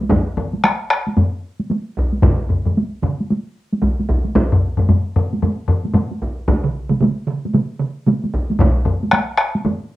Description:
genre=japanese traditional, taiko drum ensemble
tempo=113 BPM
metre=4/4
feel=swing 60% on 16ths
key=none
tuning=none
part: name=taiko ensemble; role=percussion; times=0.0-9.8 s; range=none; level=-20 LUFS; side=right 1 dB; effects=none
part: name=taiko ensemble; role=percussion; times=0.1-9.8 s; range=none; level=-17 LUFS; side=left 1 dB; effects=none
part: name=taiko ensemble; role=percussion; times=0.1-8.7 s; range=none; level=-18 LUFS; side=equal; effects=none
part: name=taiko ensemble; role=percussion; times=2.2-3.2, 6.6-8.2 s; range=none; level=-22 LUFS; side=right 4 dB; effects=none
room=wet studio reverb, RT60 0.6 s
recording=home recording on cassette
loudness=-16 LUFS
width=side -16 dB against mid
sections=0.0-10.0 A section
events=none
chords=none

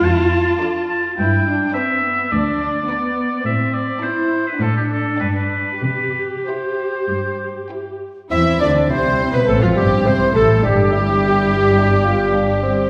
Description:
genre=quick classical-period movement for symphony orchestra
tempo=94-108 BPM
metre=4/4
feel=rubato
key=C major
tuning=A4 = 442 Hz
part: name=clear oboe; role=second line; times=0.0-12.9 s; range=F4 to A5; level=-25 LUFS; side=equal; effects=none
part: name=warm chamber viola section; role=accompaniment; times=0.0-12.9 s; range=F3 to G4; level=-25 LUFS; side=equal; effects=none
part: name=dark chamber cello section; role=bass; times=0.0-12.9 s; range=D2 to E3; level=-24 LUFS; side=equal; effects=none
part: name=rich chamber violin section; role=melody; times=0.6-12.9 s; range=F4 to D6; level=-30 LUFS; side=equal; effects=none
part: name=warm studio violin section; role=second line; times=0.6-12.9 s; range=C4 to E5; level=-30 LUFS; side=equal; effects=none
part: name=flute section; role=second line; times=8.3-12.9 s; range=F4 to E5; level=-26 LUFS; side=equal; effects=none
part: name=warm clarinet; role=second line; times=8.3-12.9 s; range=F4 to E5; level=-23 LUFS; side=equal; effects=none
part: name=mellow bassoon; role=accompaniment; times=8.3-12.9 s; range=C4 to F4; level=-25 LUFS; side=equal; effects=none
part: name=dark French horn section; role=sustained chords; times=8.3-12.9 s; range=F3 to E4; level=-25 LUFS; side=equal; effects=none
part: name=rich chamber double bass section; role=bass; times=8.3-12.9 s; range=G1 to E2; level=-24 LUFS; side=equal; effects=none
room=wet scoring stage reverb, RT60 1.6 s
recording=heard from further back in the room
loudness=-18 LUFS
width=mono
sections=0.0-8.3 A section; 8.3-12.9 A section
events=none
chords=0.0 Dm/F; 1.2 G; 3.5 Am; 4.6 D7/A; 5.2 G; 5.8 C; 10.6 Dmadd9/G

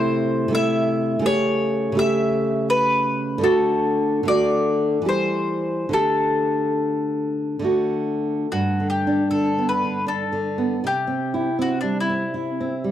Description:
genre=romantic duo for mandolin and classical guitar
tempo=68-85 BPM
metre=3/4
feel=rubato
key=G major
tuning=A4 = 441 Hz
part: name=bowl-back mandolin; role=melody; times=0.0-12.9 s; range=D4 to E5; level=-24 LUFS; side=left 2 dB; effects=none
part: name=nylon-string guitar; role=accompaniment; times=0.0-12.9 s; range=G2 to G4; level=-21 LUFS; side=equal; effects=none
room=studio reverb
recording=dry, close 1970s-style studio recording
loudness=-19 LUFS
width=side -11 dB against mid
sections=0.0-8.5 A section; 8.5-12.9 B section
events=none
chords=0.0 Am/C; 1.3 A7/C#; 3.5 D; 5.1 C/E; 5.9 Dsus4; 7.7 D; 8.5 G; 10.8 C

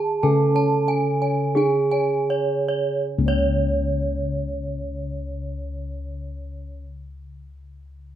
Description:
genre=Javanese gamelan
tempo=37-49 BPM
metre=4/4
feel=straight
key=unclear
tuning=A4 = 444 Hz
part: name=gamelan-type bronze metallophone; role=melody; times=0.0-6.8 s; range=C#4 to A4-20c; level=-24 LUFS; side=right 3 dB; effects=none
part: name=gamelan-type bronze metallophone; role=arpeggios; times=0.0-6.8 s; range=C#5 to A5-20c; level=-27 LUFS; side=right 4 dB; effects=none
part: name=gamelan-type bossed gongs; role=arpeggios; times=0.2-6.8 s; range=C#5 to G#5-30c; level=-32 LUFS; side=left 7 dB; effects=none
part: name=gamelan-type bossed gongs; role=bass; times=0.2-6.7 s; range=C#2 to D4+20c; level=-25 LUFS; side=left 2 dB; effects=none
room=moderate small room reverb, RT60 0.5 s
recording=rough home demo mix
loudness=-20 LUFS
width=side -11 dB against mid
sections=0.0-3.1 A section; 3.1-8.2 B section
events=slowing down 0.0-3.1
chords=none

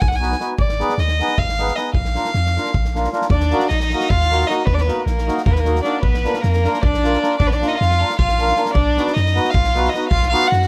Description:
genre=balkan folk, Balkan wedding band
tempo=309 BPM (eighths)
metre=7/8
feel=straight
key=unclear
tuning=A4 = 439 Hz
part: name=dark fiddle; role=melody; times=0.0-10.7 s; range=Bb4 to Ab5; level=-24 LUFS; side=equal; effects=none
part: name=punchy sub bass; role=bass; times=0.0-10.7 s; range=Ab1 to F#2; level=-22 LUFS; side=equal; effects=none
part: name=natural country drum kit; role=percussion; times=0.0-10.7 s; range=kick drum, snare drum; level=-26 LUFS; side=equal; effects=none
part: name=mellow accordion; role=accompaniment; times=0.2-10.5 s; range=Bb3 to B4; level=-24 LUFS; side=equal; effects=none
part: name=rich violin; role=second line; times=3.3-10.7 s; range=Bb3 to F#4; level=-25 LUFS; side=equal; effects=none
room=light reverb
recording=none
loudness=-18 LUFS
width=mono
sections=0.0-3.3 A section; 3.3-10.7 A section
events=none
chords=0.0 B; 0.6 Abm; 1.9 Bb; 3.3 Ebm; 6.0 Bb; 8.7 B

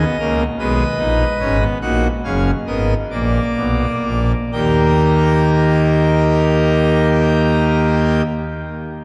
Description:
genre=classical, baroque-style 4-part fugue for pipe organ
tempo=41-51 BPM (dotted quarters)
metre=6/8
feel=straight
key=unclear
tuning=A4 = 440 Hz
part: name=pipe organ, full organ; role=solo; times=0.0-8.2 s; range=Gb1 to G5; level=-16 LUFS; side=equal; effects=none
room=wet cathedral reverb, RT60 4.5 s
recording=dark, warm production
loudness=-16 LUFS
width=mono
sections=0.0-4.5 A section; 4.5-7.5 B section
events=slowing down 0.0-4.5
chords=0.0 Abm/Cb (rootless); 0.6 Abmadd9; 1.8 Ebm; 3.1 Bb; 4.5 Eb

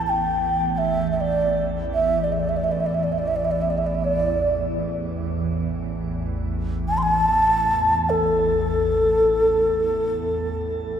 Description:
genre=world meditative, free-time meditation music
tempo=free time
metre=none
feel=none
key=unclear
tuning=A4 = 440 Hz
part: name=breathy mellow xiao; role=melody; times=0.0-11.0 s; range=A4 to C6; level=-20 LUFS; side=equal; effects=shimmer reverb, tape echo
part: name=ethereal airy pad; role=drone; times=0.0-11.0 s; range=A1 to E2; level=-26 LUFS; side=right 1 dB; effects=ensemble chorus, built-in reverb, phaser
room=wet plate reverb, RT60 2.9 s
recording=echo-heavy mix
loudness=-19 LUFS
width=side -8 dB against mid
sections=0.0-11.0 A section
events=none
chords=none

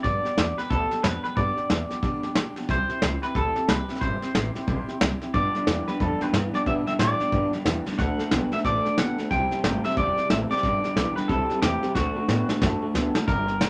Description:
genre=rockabilly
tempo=181 BPM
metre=4/4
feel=swing 62% on 8ths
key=G major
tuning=A4 = 439 Hz
part: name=electric guitar through a small old amp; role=melody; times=0.0-13.7 s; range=F#4 to G5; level=-30 LUFS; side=equal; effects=none
part: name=picked steel-string acoustic guitar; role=accompaniment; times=0.0-13.7 s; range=G2 to A4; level=-35 LUFS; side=equal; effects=none
part: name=upright bass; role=bass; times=0.0-13.7 s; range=E1 to B2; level=-33 LUFS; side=equal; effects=none
part: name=soft brush drum kit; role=drums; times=0.0-13.7 s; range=hi-hat, kick drum, snare drum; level=-29 LUFS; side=equal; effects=none
part: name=electric guitar through a small old amp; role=riff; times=5.3-13.3 s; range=G2 to B3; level=-30 LUFS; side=equal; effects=none
room=moderate small room reverb, RT60 0.5 s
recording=none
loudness=-25 LUFS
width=mono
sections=0.0-13.3 A section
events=drum fill 12.0-13.3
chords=0.0 G; 2.7 C; 5.3 G; 8.0 D; 9.3 C; 10.6 G; 11.3 C; 12.0 D

